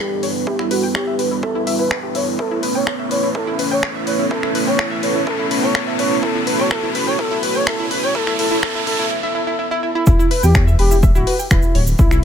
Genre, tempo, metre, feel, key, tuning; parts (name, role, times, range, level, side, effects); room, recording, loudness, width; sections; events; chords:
melodic techno; 125 BPM; 4/4; straight; E dorian; A4 = 444 Hz
expressive portamento lead; melody; 0.0-12.1 s; E4 to C#5; -22 LUFS; equal; chorus, sidechain pumping, ping-pong delay
dark analog pad; sustained chords; 0.0-9.1 s; G3 to B4; -25 LUFS; equal; chorus, sidechain pumping
tight sequenced synth; arpeggios; 0.0-12.2 s; E4 to G5; -24 LUFS; equal; chorus, sidechain pumping, ping-pong delay
riser; sound effects; 0.0-9.1 s; -26 LUFS; equal
deep dark ambient pad; texture; 0.0-12.2 s; B3 to D5; -25 LUFS; right 4 dB; chorus, built-in reverb, sidechain pumping
house drum kit; drums; 0.2-12.2 s; finger snaps, hi-hat; -24 LUFS; left 2 dB
electronic kick drum; drums; 0.5-12.1 s; -16 LUFS; equal; high-pass filter on kick
dark detuned saw bass; bass; 10.1-12.2 s; D1 to E2; -16 LUFS; equal; sidechain pumping
cabasa; percussion; 10.1-12.2 s; -30 LUFS; right 5 dB
light reverb; -15 LUFS; side -8 dB against mid
0.0-10.1 A section; 10.1-12.2 B section
build-up 0.0-10.1; riser 0.0-9.1; filter sweep on analog synth lead 0.0-10.1; break 9.1-10.1; drop 10.1-12.2
0.0 Em7; 2.4 Aadd9; 10.1 E7(no3)